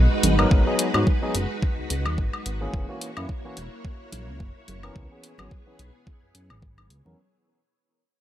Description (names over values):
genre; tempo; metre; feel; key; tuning
nu-disco, nu disco; 108 BPM; 4/4; swing 55% on 16ths; unclear; A4 = 440 Hz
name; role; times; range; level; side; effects
string machine, full ensemble; sustained chords; 0.0-7.2 s; G#3 to C#5; -30 LUFS; equal; ensemble chorus, sidechain pumping
chorused synth bass; bass; 0.0-7.2 s; E1 to G#2; -26 LUFS; equal; none
electronic hi-hat and woodblock; drums; 0.2-7.0 s; none; -26 LUFS; left 2 dB; overdrive
congas; percussion; 0.2-7.2 s; none; -31 LUFS; right 3 dB; none
overdriven tine electric piano; accompaniment; 0.4-7.2 s; E3 to A#4; -28 LUFS; equal; sidechain pumping, low-pass filter, digital delay
electronic kick drum; drums; 0.5-6.7 s; none; -21 LUFS; equal; overdrive
room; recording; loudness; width
little or no reverb; none; -21 LUFS; side -12 dB against mid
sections
0.0-7.2 A section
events
fade-out 0.0-7.2; filter sweep on tine electric piano 0.0-7.2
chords
0.2 G#m7; 2.7 F#7; 5.0 C#m7